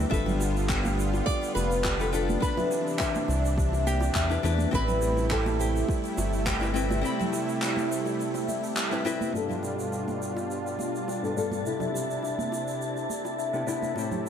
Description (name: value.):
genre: sunset chillout.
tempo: 104 BPM.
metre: 4/4.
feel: straight.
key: unclear.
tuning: A4 = 440 Hz.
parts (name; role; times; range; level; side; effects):
flamenco guitar; melody; 0.0-8.7 s; G4 to E5; -32 LUFS; right 1 dB; ping-pong delay.
nylon-string guitar; accompaniment; 0.0-14.3 s; G2 to B5; -32 LUFS; moving between left 6 dB and right 6 dB; auto-pan, low-pass filter, ping-pong delay.
lush unison pad; sustained chords; 0.0-14.3 s; B2 to G4; -32 LUFS; equal; chorus.
buzzing kalimba; arpeggios; 0.0-14.3 s; G4 to A5; -35 LUFS; left 3 dB; low-pass filter, ping-pong delay.
round analog bass; bass; 0.0-7.0 s; F1 to E2; -28 LUFS; equal; none.
electronic kick drum; drums; 0.1-6.6 s; none; -30 LUFS; equal; overdrive.
shaker and handclaps; drums; 0.1-14.3 s; none; -35 LUFS; right 1 dB; none.
bongos and congas; percussion; 0.1-14.2 s; none; -37 LUFS; right 3 dB; none.
wind-like tuned noise texture; texture; 10.1-14.3 s; A4 to A5; -40 LUFS; right 1 dB; built-in reverb.
room: moderate concert hall reverb, RT60 2.5 s.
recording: none.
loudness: -25 LUFS.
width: side -8 dB against mid.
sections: 0.0-9.3 A section; 9.3-14.3 B section.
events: filter sweep on kalimba 9.3-14.3.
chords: 0.1 G7; 2.4 Cmaj9; 4.7 Am7; 9.3 G7; 11.7 Cmaj9.